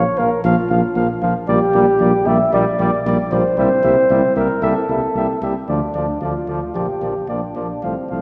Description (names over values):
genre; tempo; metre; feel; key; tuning
classical, brass quintet; 114 BPM; 4/4; straight; unclear; A4 = 441 Hz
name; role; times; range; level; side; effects
dark trumpet; melody; 0.0-8.2 s; D5 to F5; -27 LUFS; equal; none
dark flugelhorn; second line; 0.0-8.2 s; C4 to E5; -21 LUFS; equal; none
bright trombone; accompaniment; 0.0-8.2 s; F3 to G3; -28 LUFS; equal; none
warm French horn; accompaniment; 0.0-8.2 s; A3 to Bb3; -30 LUFS; equal; none
dark tuba; bass; 0.0-8.2 s; Bb1 to D2; -23 LUFS; equal; none
room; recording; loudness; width
wet concert hall reverb, RT60 2.4 s; heard from further back in the room; -17 LUFS; mono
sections
0.0-8.2 A section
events
none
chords
0.0 Bb5; 1.5 Gm/Bb; 3.6 C7; 5.7 Dm; 6.7 Gm7/Bb